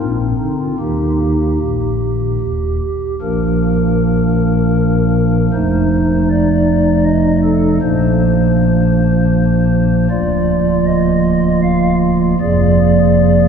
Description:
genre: classical, chorale-style piece for pipe organ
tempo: 78 BPM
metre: 3/4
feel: rubato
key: Eb major, Bb major from 3.2 s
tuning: A4 = 440 Hz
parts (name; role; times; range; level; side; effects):
- pipe organ, stopped flute; solo; 0.0-13.5 s; D1 to F5; -12 LUFS; right 1 dB; none
room: wet cathedral reverb, RT60 4.1 s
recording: minimal, uncompressed stereo recording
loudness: -12 LUFS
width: side -7 dB against mid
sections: 0.0-3.2 A section; 3.2-13.5 B section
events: none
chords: 0.0 Bbadd9; 0.8 Eb; 3.2 Bb; 5.5 F7; 7.8 Bb; 10.1 Bb/D; 12.4 Bb7/F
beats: | 0.79 1.60 2.40 | 3.21 3.99 4.77 | 5.54 6.30 7.06 | 7.83 8.59 9.35 | 10.12 10.88 11.63 | 12.40 13.16

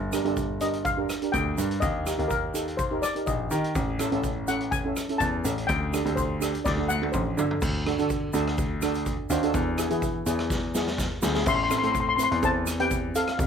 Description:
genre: calypso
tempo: 124 BPM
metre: 4/4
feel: straight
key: unclear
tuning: A4 = 442 Hz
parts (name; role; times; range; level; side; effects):
- warm concert grand piano; bass; 0.0-13.5 s; F1 to E3; -29 LUFS; left 1 dB; none
- steel pan; accompaniment; 0.1-13.4 s; B3 to C5; -29 LUFS; right 4 dB; none
- street-band drum kit; drums; 0.1-13.5 s; crash cymbal, hi-hat, kick drum, rim click, snare drum, toms; -31 LUFS; equal; none
- egg shaker; percussion; 0.1-13.5 s; none; -39 LUFS; right 6 dB; none
- steel pan; melody; 0.6-7.6, 11.5-13.4 s; A4 to C6; -27 LUFS; left 5 dB; none
room: moderate studio reverb, RT60 0.6 s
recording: none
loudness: -24 LUFS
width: side -7 dB against mid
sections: 0.0-7.6 A section; 7.6-11.5 B section; 11.5-13.5 C section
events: steel pan solo 0.0-7.6; drum fill 6.6-7.6, 10.5-11.5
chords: 0.0 Gm; 1.8 Eb; 3.8 A; 5.7 Dsus4; 6.6 D; 9.5 E; 11.5 Am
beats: 0.37 0.86 1.34 | 1.82 2.31 2.79 3.27 | 3.75 4.24 4.72 5.20 | 5.68 6.17 6.65 7.13 | 7.61 8.10 8.58 9.06 | 9.54 10.02 10.50 10.98 | 11.46 11.95 12.43 12.91 | 13.39

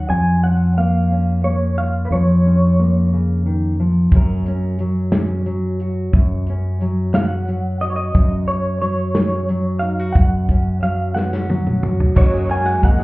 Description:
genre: indie folk with a building arrangement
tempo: 60 BPM (dotted quarters)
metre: 6/8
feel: straight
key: F# major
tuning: A4 = 440 Hz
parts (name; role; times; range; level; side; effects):
- electric guitar through a small old amp; melody; 0.0-3.1, 7.1-13.0 s; B4 to G#5; -23 LUFS; right 1 dB; tremolo
- fingerpicked steel-string acoustic guitar; accompaniment; 0.0-13.0 s; F#2 to A#4; -22 LUFS; left 1 dB; none
- fingered electric bass; bass; 0.0-13.0 s; E#2 to F#2; -18 LUFS; equal; none
- natural country drum kit; drums; 4.1-13.0 s; crash cymbal, hi-hat, kick drum, snare drum, toms; -16 LUFS; equal; none
- picked swing-style acoustic guitar; accompaniment; 12.1-13.0 s; F#2 to F#4; -29 LUFS; left 1 dB; none
- warm chamber string section; sustained chords; 12.2-13.0 s; G#3 to F#4; -29 LUFS; equal; none
- bluegrass banjo; arpeggios; 12.2-13.0 s; F#4 to F#5; -29 LUFS; right 3 dB; analog delay
- tambourine; percussion; 12.2-13.0 s; none; -58 LUFS; left 4 dB; none
room: light reverb, small room ambience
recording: heard muffled through a wall, club reverb, EQ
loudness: -15 LUFS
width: side -21 dB against mid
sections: 0.0-12.2 A section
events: drum fill 11.2-12.2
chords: 0.1 A#m/E#; 4.1 F#; 12.2 F#add9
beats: | 0.10 1.11 | 2.11 3.12 | 4.12 5.13 | 6.13 7.14 | 8.15 9.15 | 10.16 11.16 | 12.16

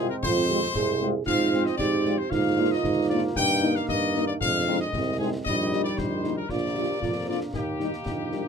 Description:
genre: military-style march for wind band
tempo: 115 BPM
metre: 2/4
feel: straight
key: Eb major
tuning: A4 = 440 Hz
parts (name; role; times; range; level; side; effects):
- bright trumpet section; melody; 0.0-8.5 s; G4 to G5; -28 LUFS; left 4 dB; none
- dark French horn section; accompaniment; 0.0-8.4 s; F3 to F4; -29 LUFS; left 4 dB; none
- warm trombone section; sustained chords; 0.0-8.5 s; D3 to C4; -34 LUFS; left 1 dB; none
- clear tuba; bass; 0.0-8.5 s; Bb1 to Ab2; -28 LUFS; right 3 dB; none
- mellow euphonium; second line; 0.2-8.5 s; C4 to Ab4; -30 LUFS; right 6 dB; none
- concert snare drum, concert bass drum and clash cymbals; drums; 0.2-8.4 s; none; -35 LUFS; left 2 dB; none
room: light reverb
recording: minimal, uncompressed stereo recording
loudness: -23 LUFS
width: side -6 dB against mid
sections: 0.0-8.5 A section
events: none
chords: 0.0 Fm; 1.3 Fm/Ab; 2.3 Bb7/Ab; 3.4 Eb/G; 4.4 Fm7; 5.5 Eb/Bb; 6.5 Bb; 7.5 Eb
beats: | 0.23 0.75 | 1.27 1.80 | 2.32 2.84 | 3.36 3.88 | 4.41 4.93 | 5.45 5.97 | 6.50 7.02 | 7.54 8.06

